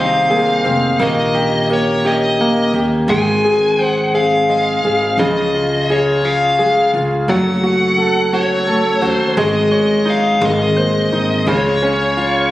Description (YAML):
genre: pop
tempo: 57 BPM (dotted quarters)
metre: 6/8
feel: straight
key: Db major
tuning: A4 = 442 Hz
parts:
  - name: dark smooth lead guitar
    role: melody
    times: 0.0-12.5 s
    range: Db5 to Ab5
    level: -17 LUFS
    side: left 2 dB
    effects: overdrive
  - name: clear concert grand piano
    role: accompaniment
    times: 0.0-12.5 s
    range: C3 to Eb5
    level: -16 LUFS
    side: equal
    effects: none
  - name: fingerpicked steel-string acoustic guitar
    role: arpeggios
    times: 0.0-12.5 s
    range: Eb3 to Ab4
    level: -22 LUFS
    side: left 1 dB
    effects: none
  - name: upright bass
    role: bass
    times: 0.0-12.5 s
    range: F1 to Eb2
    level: -24 LUFS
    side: equal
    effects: none
room: moderate lush hall reverb, RT60 2.1 s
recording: recorded on a phone in the room, studio reverb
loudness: -13 LUFS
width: side -15 dB against mid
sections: 0.0-12.5 A section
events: none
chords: 0.0 Abadd9/C; 1.0 Eb7/Bb; 3.1 Ab; 5.2 Db; 7.3 Gbm; 9.4 Absus4; 10.4 Abadd9; 11.5 Db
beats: | 0.99 2.03 | 3.08 4.13 | 5.19 6.24 | 7.29 8.33 | 9.37 10.42 | 11.47